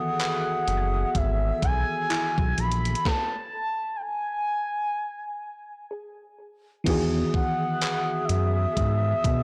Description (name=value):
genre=contemporary R&B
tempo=63 BPM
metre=4/4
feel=swing 58% on 16ths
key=E major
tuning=A4 = 440 Hz
part: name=gliding portamento lead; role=melody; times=0.0-9.4 s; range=D#5 to B5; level=-30 LUFS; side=equal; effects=chorus
part: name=FM electric piano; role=accompaniment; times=0.0-9.4 s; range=D#3 to A4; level=-32 LUFS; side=equal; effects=none
part: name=mellow hollow small flute group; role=sustained chords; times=0.0-9.4 s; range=G#4 to E6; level=-36 LUFS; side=equal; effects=none
part: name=gated 80s digital drum machine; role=drums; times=0.2-9.4 s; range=crash cymbal, handclaps, hi-hat, kick drum, snare drum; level=-31 LUFS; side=equal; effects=gated reverb, gated reverb snare
part: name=soft round pluck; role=texture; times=0.2-9.4 s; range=E4 to G#6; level=-42 LUFS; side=equal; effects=lush chorus, digital delay
part: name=smooth gliding synth bass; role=bass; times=0.7-9.4 s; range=F#1 to B2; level=-28 LUFS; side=equal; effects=none
room=digital ambience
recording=blown-out, overdriven recording, overdrive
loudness=-26 LUFS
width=mono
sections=0.0-6.9 A section; 6.9-9.4 A section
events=stop 3.1-6.9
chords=0.0 Emaj7; 3.1 N.C.; 6.9 Emaj7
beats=0.20 1.15 2.10 | 3.06 4.01 4.96 5.91 | 6.87 7.82 8.77